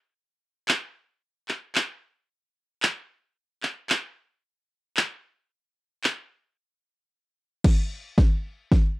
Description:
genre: pop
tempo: 112 BPM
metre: 4/4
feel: straight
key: none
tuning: none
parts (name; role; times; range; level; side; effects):
- deep house drum kit; drums; 0.7-8.8 s; crash cymbal, handclaps, kick drum, snare drum; -20 LUFS; equal; none
room: little or no reverb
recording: dry, close 1970s-style studio recording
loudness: -24 LUFS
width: side -20 dB against mid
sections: 0.0-7.6 A section; 7.6-9.0 B section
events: build-up 7.6-9.0; drum fill 7.6-9.0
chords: none

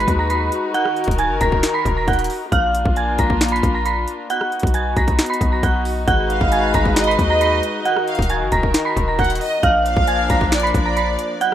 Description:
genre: hip hop, trap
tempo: 135 BPM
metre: 4/4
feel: half-time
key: Eb harmonic minor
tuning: A4 = 441 Hz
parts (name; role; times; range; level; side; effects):
- dark detuned synth bell; melody; 0.0-11.5 s; F5 to Cb7; -20 LUFS; right 3 dB; chorus, tremolo, low-pass filter, plate reverb
- warm chamber string section; sustained chords; 0.0-11.5 s; Eb3 to Cb5; -23 LUFS; left 3 dB; plate reverb
- warm 808-style bass; bass; 0.0-11.2 s; D1 to Eb2; -22 LUFS; equal; none
- trap drum kit; drums; 0.0-11.5 s; finger snaps, hi-hat, kick drum, rim click, snare drum; -21 LUFS; equal; overdrive
- warm studio violin section; second line; 6.3-11.4 s; D5 to Gb5; -22 LUFS; right 1 dB; plate reverb, ping-pong delay
room: light reverb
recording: rough home demo mix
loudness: -16 LUFS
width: side -11 dB against mid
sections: 0.0-11.5 A section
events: none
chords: 0.0 Abm7; 0.7 Ebm; 2.5 Bb; 4.3 B; 6.1 Abm7; 7.9 Ebm; 9.6 Bb

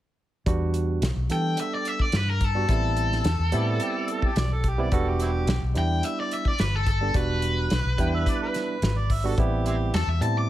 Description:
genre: straight-eighth soul blues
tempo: 108 BPM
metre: 4/4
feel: straight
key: E minor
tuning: A4 = 440 Hz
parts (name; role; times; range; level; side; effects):
- barky tine electric piano; accompaniment; 0.5-10.5 s; G3 to A4; -29 LUFS; right 4 dB; none
- vintage muted fingered electric bass; bass; 0.5-10.5 s; E1 to E3; -25 LUFS; equal; none
- warm soul drum kit; drums; 0.5-10.3 s; hi-hat, kick drum, snare drum; -27 LUFS; equal; none
- overdriven electric guitar; melody; 1.3-10.5 s; A4 to D6; -29 LUFS; left 3 dB; none
- mellow harmonica; second line; 3.6-9.9 s; C4 to G5; -33 LUFS; right 3 dB; overdrive
room: studio reverb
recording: none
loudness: -22 LUFS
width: side -13 dB against mid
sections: 0.5-10.5 A section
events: none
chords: 0.5 Em7; 2.7 Am7; 4.9 Em7; 9.4 Am7

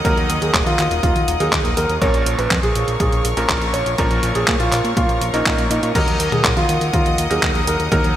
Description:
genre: italo disco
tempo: 122 BPM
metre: 4/4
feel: straight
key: Eb minor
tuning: A4 = 439 Hz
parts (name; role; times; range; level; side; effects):
- dark concert grand piano; melody; 0.0-8.2 s; Eb4 to Db5; -21 LUFS; right 1 dB; digital delay
- rich chamber string section; sustained chords; 0.0-8.2 s; Bb4 to Eb6; -25 LUFS; left 2 dB; none
- fat analog bass; bass; 0.0-8.1 s; Eb1 to Bb2; -22 LUFS; equal; none
- electronic kick drum; drums; 0.0-8.0 s; none; -22 LUFS; equal; none
- bright electric grand piano; stabs; 0.1-8.2 s; Bb2 to Bb4; -25 LUFS; right 2 dB; none
- detuned 8-bit digital drum machine; drums; 0.1-8.1 s; crash cymbal, handclaps, hi-hat, toms; -22 LUFS; equal; none
room: moderate lush hall reverb, RT60 2.0 s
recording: bright 1980s-style digital production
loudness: -15 LUFS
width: side -11 dB against mid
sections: 0.0-8.2 A section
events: none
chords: 0.0 Ebm; 2.0 Bbm; 6.0 Ebm

